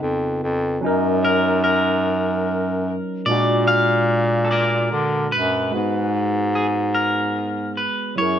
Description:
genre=slow six-eight R&B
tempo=49 BPM (dotted quarters)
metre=6/8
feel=straight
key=unclear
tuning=A4 = 441 Hz
part: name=barky tine electric piano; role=accompaniment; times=0.0-8.4 s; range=Bb2 to Cb5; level=-23 LUFS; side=right 2 dB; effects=overdrive, lush chorus
part: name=clear bass clarinet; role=bass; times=0.0-8.4 s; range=F2 to D3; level=-21 LUFS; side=left 1 dB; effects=none
part: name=electric guitar at the edge of break-up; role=melody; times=1.2-8.4 s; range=Ab4 to F5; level=-22 LUFS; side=left 1 dB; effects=spring reverb
room=little or no reverb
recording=none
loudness=-18 LUFS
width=side -9 dB against mid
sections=0.0-5.7 A section; 5.7-8.4 B section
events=none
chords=0.0 Db9; 0.8 Gb6; 3.3 Bb7b13; 5.7 Abm9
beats=| 0.82 2.04 | 3.27 4.49 | 5.72 6.94 | 8.17

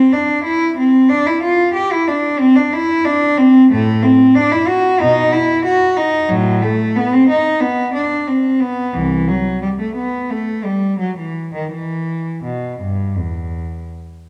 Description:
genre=classical, baroque-style suite movement for unaccompanied cello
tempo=82-93 BPM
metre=4/4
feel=rubato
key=E minor from 3.7 s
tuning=A4 = 441 Hz
part: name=rich cello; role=solo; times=0.0-13.9 s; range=C2 to G4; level=-15 LUFS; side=equal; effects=none
room=wet recital hall reverb, RT60 1.6 s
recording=dark, warm production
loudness=-15 LUFS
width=mono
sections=0.0-14.3 A section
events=none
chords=none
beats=0.44 | 1.09 1.74 2.40 3.05 | 3.70 4.34 4.99 5.64 | 6.29 6.95 7.61 8.28 | 8.96 9.63 10.31 11.00 | 11.72 12.44 13.16 13.87

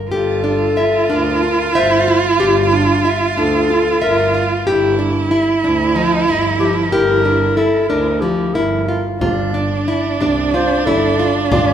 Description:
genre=contemporary instrumental, chamber music in an uneven meter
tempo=184 BPM (eighths)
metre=7/8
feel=straight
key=G dorian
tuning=A4 = 439 Hz
part: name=nylon-string guitar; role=arpeggios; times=0.0-11.7 s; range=F3 to E5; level=-18 LUFS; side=left 2 dB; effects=none
part: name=mellow clarinet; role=melody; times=0.1-11.7 s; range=G4 to D5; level=-19 LUFS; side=left 3 dB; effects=none
part: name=rich cello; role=second line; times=0.1-11.7 s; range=D4 to F4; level=-18 LUFS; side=right 3 dB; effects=none
part: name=bright double bass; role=bass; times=0.1-11.7 s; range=G1 to D2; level=-22 LUFS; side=right 4 dB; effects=none
part: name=frame drum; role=percussion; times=9.2-11.7 s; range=none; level=-24 LUFS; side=left 3 dB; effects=none
room=wet recital hall reverb, RT60 1.6 s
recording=minimal, uncompressed stereo recording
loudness=-13 LUFS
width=side -9 dB against mid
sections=0.1-11.7 A section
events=none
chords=0.1 Gm7; 9.2 F5/G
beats=| 0.11 0.44 0.77 1.09 1.42 1.75 2.07 | 2.40 2.72 3.05 3.37 3.69 4.02 4.34 | 4.66 4.99 5.31 5.64 5.96 6.28 6.61 | 6.93 7.25 7.58 7.90 8.23 8.56 8.89 | 9.22 9.55 9.88 10.21 10.54 10.86 11.19 | 11.52

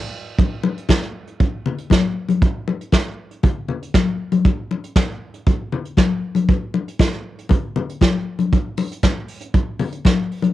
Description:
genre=disco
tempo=118 BPM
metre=4/4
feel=straight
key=none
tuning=none
part: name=vintage brush drum kit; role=drums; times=0.4-10.5 s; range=hi-hat, kick drum, snare drum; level=-18 LUFS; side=right 2 dB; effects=none
part: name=congas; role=percussion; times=0.4-10.5 s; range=none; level=-20 LUFS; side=left 5 dB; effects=none
room=little or no reverb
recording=home recording on cassette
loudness=-17 LUFS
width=side -14 dB against mid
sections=0.4-10.5 A section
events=drum fill 0.0-0.4; band accent 0.0-0.4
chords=none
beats=| 0.39 0.90 1.40 1.91 | 2.42 2.93 3.44 3.95 | 4.46 4.97 5.48 5.99 | 6.49 7.00 7.51 8.02 | 8.53 9.04 9.55 10.06

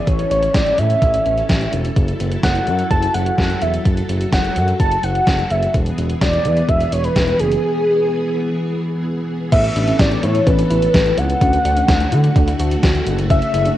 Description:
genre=synth-pop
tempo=127 BPM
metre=4/4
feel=straight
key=unclear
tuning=A4 = 440 Hz
part: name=warm velvety synth lead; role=melody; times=0.0-13.8 s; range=G#4 to A5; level=-19 LUFS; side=equal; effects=chorus, cassette tape, analog delay
part: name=string machine, full ensemble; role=sustained chords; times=0.0-13.8 s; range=C#3 to A4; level=-24 LUFS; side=equal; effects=ensemble chorus, cassette tape
part: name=smooth gliding synth bass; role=bass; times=0.1-13.7 s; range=E1 to D3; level=-19 LUFS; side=equal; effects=none
part: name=gated 80s digital drum machine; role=drums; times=0.1-13.8 s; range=crash cymbal, hi-hat, kick drum, snare drum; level=-18 LUFS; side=equal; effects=gated reverb, gated reverb snare, overdrive, cassette tape
part: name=soft round pluck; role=arpeggios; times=9.5-13.8 s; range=B3 to F#4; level=-25 LUFS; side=left 1 dB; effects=chorus, cassette tape, analog delay
room=light reverb, digital ambience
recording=home recording on cassette, lossy compression artefacts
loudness=-14 LUFS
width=side -13 dB against mid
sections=0.0-9.5 A section; 9.5-13.8 B section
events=break 7.6-9.5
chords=0.1 A; 2.0 F#m7; 5.7 E; 9.5 Asus2; 11.4 D; 13.1 F#m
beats=| 0.07 0.55 1.02 1.49 | 1.96 2.44 2.91 3.38 | 3.85 4.33 4.80 5.27 | 5.74 6.22 6.69 7.16 | 7.63 8.11 8.58 9.05 | 9.52 9.99 10.47 10.94 | 11.41 11.88 12.36 12.83 | 13.30 13.78

